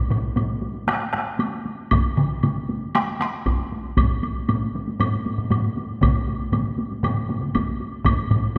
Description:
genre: japanese traditional, taiko drum ensemble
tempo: 117 BPM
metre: 4/4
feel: straight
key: none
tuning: none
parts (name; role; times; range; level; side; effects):
- taiko ensemble; percussion; 0.1-8.5 s; none; -29 LUFS; equal; none
- taiko ensemble; percussion; 0.1-8.4 s; none; -27 LUFS; equal; none
- woodblock; percussion; 0.1-8.6 s; none; -33 LUFS; equal; none
- taiko ensemble; percussion; 1.9-7.5 s; none; -29 LUFS; equal; none
- taiko ensemble; percussion; 1.9-8.2 s; none; -27 LUFS; equal; none
room: wet concert hall reverb, RT60 2.1 s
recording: none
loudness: -23 LUFS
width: mono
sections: 0.0-8.6 A section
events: none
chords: none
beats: 0.36 0.88 1.40 | 1.92 2.43 2.95 3.46 | 3.97 4.49 5.00 5.51 | 6.02 6.53 7.04 7.55 | 8.06 8.56

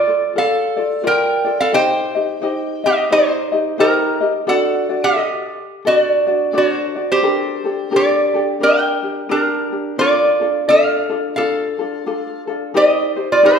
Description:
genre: hawaiian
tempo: 87 BPM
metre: 4/4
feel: swing 61% on 8ths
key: G minor, Bb major from 10.0 s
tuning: A4 = 442 Hz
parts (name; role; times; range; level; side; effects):
- lap resonator guitar; melody; 0.0-13.6 s; D4 to G5; -15 LUFS; right 1 dB; none
- ukulele; accompaniment; 0.0-13.6 s; D4 to Eb5; -20 LUFS; left 2 dB; none
room: wet large studio reverb, RT60 1.3 s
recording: band playing live in one room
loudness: -14 LUFS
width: side -7 dB against mid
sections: 0.0-10.0 A section; 10.0-13.6 B section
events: none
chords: 0.0 Bbmaj7; 1.7 Cm; 4.5 D; 7.2 Gmadd9; 10.0 Bbmaj7; 12.7 Cm7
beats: 0.34 1.03 | 1.72 2.41 3.10 3.78 | 4.47 5.16 5.85 6.54 | 7.22 7.91 8.60 9.29 | 9.98 10.67 11.36 12.04 | 12.73 13.42

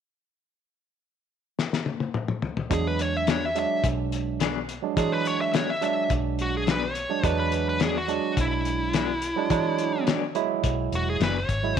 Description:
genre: straight-eighth soul blues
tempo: 106 BPM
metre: 4/4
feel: straight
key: E mixolydian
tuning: A4 = 440 Hz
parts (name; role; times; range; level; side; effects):
- cloth-damped thuddy drum kit; drums; 1.6-11.8 s; hi-hat, kick drum, snare drum, toms; -28 LUFS; left 5 dB; none
- smooth overdriven lead guitar; melody; 2.7-11.8 s; E4 to E5; -28 LUFS; left 1 dB; slapback echo
- barky tine electric piano; accompaniment; 2.7-11.8 s; F#3 to E4; -28 LUFS; right 12 dB; overdrive
- vintage muted fingered electric bass; bass; 2.7-11.8 s; E1 to E3; -30 LUFS; left 1 dB; none
- clean electric guitar; stabs; 3.3-11.4 s; F#3 to G#4; -33 LUFS; left 11 dB; tremolo
room: light reverb, small room reverb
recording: 1960s-style stereo with parts hard left and right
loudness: -23 LUFS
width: side -8 dB against mid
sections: 0.4-2.7 A section; 2.7-11.8 B section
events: drum fill 1.6-2.7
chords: 0.4 N.C.; 2.7 E9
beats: | 0.43 1.00 1.57 2.13 | 2.70 3.27 3.84 4.40 | 4.97 5.54 6.10 6.67 | 7.24 7.80 8.37 8.94 | 9.50 10.07 10.64 11.20 | 11.77

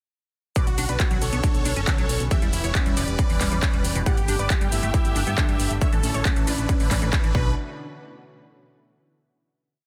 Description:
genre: uplifting trance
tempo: 137 BPM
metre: 4/4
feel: straight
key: B minor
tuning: A4 = 441 Hz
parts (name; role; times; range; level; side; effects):
- big supersaw lead; melody; 0.6-7.5 s; D4 to F#5; -33 LUFS; equal; phaser, cassette tape, sidechain pumping, tape echo
- analog pluck; second line; 0.6-7.5 s; E4 to F#5; -41 LUFS; equal; none
- warm velvety synth lead; second line; 0.6-7.5 s; C#4 to G4; -36 LUFS; equal; chorus, vintage 12-bit sampler grit, digital delay
- lush unison pad; sustained chords; 0.6-7.6 s; D3 to G4; -38 LUFS; equal; chorus, sidechain pumping
- liquid acid bass; arpeggios; 0.6-7.6 s; A2 to D4; -34 LUFS; equal; chorus, sidechain pumping, digital delay
- big-room dance drum kit; drums; 0.6-7.3 s; handclaps, hi-hat, shaker; -31 LUFS; equal; overdrive, sidechain pumping on hats, sidechain pumping on perc
- electronic kick drum; drums; 0.6-7.4 s; none; -24 LUFS; equal; overdrive
- solid FM bass; bass; 0.7-7.6 s; E1 to A2; -30 LUFS; equal; sidechain pumping
room: digital ambience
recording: dense, heavily limited modern master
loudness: -22 LUFS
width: mono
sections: 0.6-7.6 drop; 7.6-9.3 final hit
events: drop 0.6-7.6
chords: 0.6 Bmadd9; 2.3 Em; 4.1 Gadd9; 5.8 Asus4; 7.3 Bmadd9; 7.6 N.C.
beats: | 0.56 1.00 1.44 1.87 | 2.31 2.75 3.19 3.63 | 4.06 4.50 4.94 5.38 | 5.82 6.25 6.69 7.13

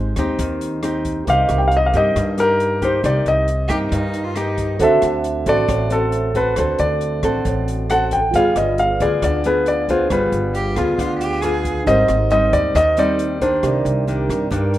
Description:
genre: bossa nova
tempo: 136 BPM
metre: 4/4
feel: straight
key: C minor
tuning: A4 = 444 Hz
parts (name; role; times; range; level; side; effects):
- warm grand piano; melody; 0.0-14.8 s; A4 to G5; -18 LUFS; left 1 dB; none
- nylon-string guitar; accompaniment; 0.0-14.8 s; G2 to A4; -21 LUFS; equal; none
- upright bass; bass; 0.0-14.8 s; G1 to G2; -23 LUFS; equal; none
- open jazz drum kit; drums; 0.2-14.8 s; hi-hat, kick drum, rim click; -30 LUFS; equal; none
- mellow tine electric piano; accompaniment; 1.2-14.8 s; Eb4 to D6; -26 LUFS; right 6 dB; phaser
- rich cello; second line; 3.7-4.7, 10.5-11.7 s; Eb4 to Ab4; -26 LUFS; right 2 dB; none
room: moderate digital room reverb, RT60 1.1 s, small room ambience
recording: rough home demo mix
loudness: -16 LUFS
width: side -14 dB against mid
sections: 0.0-14.8 A section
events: none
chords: 0.0 Abmaj7; 1.3 Cm7; 4.8 D7; 8.3 G7b9; 11.9 Abmaj7; 13.6 Cm9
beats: 0.39 0.83 | 1.27 1.71 2.15 2.60 | 3.04 3.48 3.92 4.36 | 4.80 5.25 5.69 6.13 | 6.57 7.01 7.45 7.89 | 8.34 8.78 9.22 9.66 | 10.10 10.54 10.98 11.42 | 11.86 12.30 12.75 13.19 | 13.63 14.07 14.51

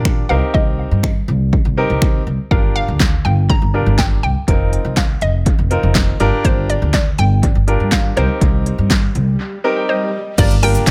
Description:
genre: dance-pop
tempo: 122 BPM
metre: 4/4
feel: straight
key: G minor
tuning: A4 = 441 Hz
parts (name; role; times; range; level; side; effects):
- hollow square pluck; melody; 0.0-10.9 s; C5 to Bb5; -26 LUFS; equal; chorus, analog delay
- clear baby grand piano; accompaniment; 0.0-10.9 s; Bb3 to Bb5; -23 LUFS; equal; none
- upright bass; bass; 0.0-10.9 s; F1 to G2; -19 LUFS; equal; sidechain pumping
- deep house drum kit; drums; 0.1-10.9 s; crash cymbal, finger snaps, handclaps, hi-hat, kick drum, shaker, snare drum; -18 LUFS; equal; none
- swell; sound effects; 9.0-10.4 s; none; -31 LUFS; equal; none
room: little or no reverb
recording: echo-heavy mix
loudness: -16 LUFS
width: mono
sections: 0.0-10.4 A section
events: swell 9.0-10.4; break 9.4-10.4; grand piano fill 9.4-10.4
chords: 0.3 Cm7; 2.5 Gm7; 4.5 F7sus4; 6.2 Gm7; 8.2 Cm7; 10.4 Gm7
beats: 0.05 | 0.55 1.04 1.53 2.02 | 2.51 3.00 3.50 3.99 | 4.48 4.97 5.46 5.96 | 6.45 6.94 7.43 7.92 | 8.41 8.90 9.40 9.89 | 10.38 10.87

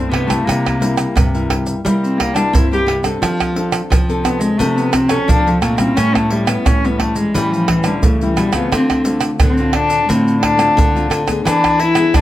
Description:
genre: samba and choro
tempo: 87 BPM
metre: 4/4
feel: straight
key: C major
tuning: A4 = 442 Hz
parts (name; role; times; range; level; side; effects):
- warm cello; melody; 0.0-12.2 s; C#3 to G4; -17 LUFS; left 2 dB; plate reverb
- nylon-string guitar; accompaniment; 0.0-12.2 s; G2 to A4; -21 LUFS; left 2 dB; none
- nylon-string guitar; bass; 0.0-12.2 s; A2 to C4; -20 LUFS; equal; none
- surdo, pandeiro, tamborim and tube shaker; percussion; 0.1-12.2 s; none; -17 LUFS; right 2 dB; none
room: moderate studio reverb, RT60 0.5 s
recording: none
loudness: -13 LUFS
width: side -14 dB against mid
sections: 0.0-12.2 A section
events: cello solo 0.0-12.2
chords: 0.0 C69; 3.2 F6; 6.0 A7; 8.7 Dm7; 11.5 E7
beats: | 0.47 1.16 1.85 2.54 | 3.22 3.91 4.60 5.29 | 5.97 6.66 7.35 8.03 | 8.72 9.40 10.09 10.78 | 11.46 12.15

